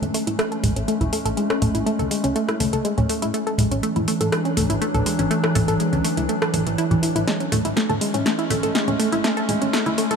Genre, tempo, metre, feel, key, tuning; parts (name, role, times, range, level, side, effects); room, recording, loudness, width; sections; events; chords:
progressive house; 122 BPM; 4/4; straight; A major; A4 = 440 Hz
evolving wavetable pad; sustained chords; 0.0-10.2 s; E3 to D4; -24 LUFS; equal; chorus, built-in reverb
wide unison pluck; arpeggios; 0.0-10.2 s; E3 to A4; -23 LUFS; equal; dub echo
plucky analog bass; bass; 0.0-10.2 s; A1 to A2; -27 LUFS; equal
deep house drum kit; drums; 0.0-10.2 s; hi-hat, rim click, snare drum; -27 LUFS; equal; overdrive, studio reverb
congas; percussion; 0.0-10.0 s; -25 LUFS; right 1 dB
light reverb; dark, warm production, high-pass filter; -19 LUFS; side -6 dB against mid
0.0-10.2 A section
build-up 0.0-10.2; filter sweep on synth pluck 0.0-10.2; drum fill 7.3-10.2
0.0 Amaj7; 3.3 Dadd9/A; 7.3 Amaj7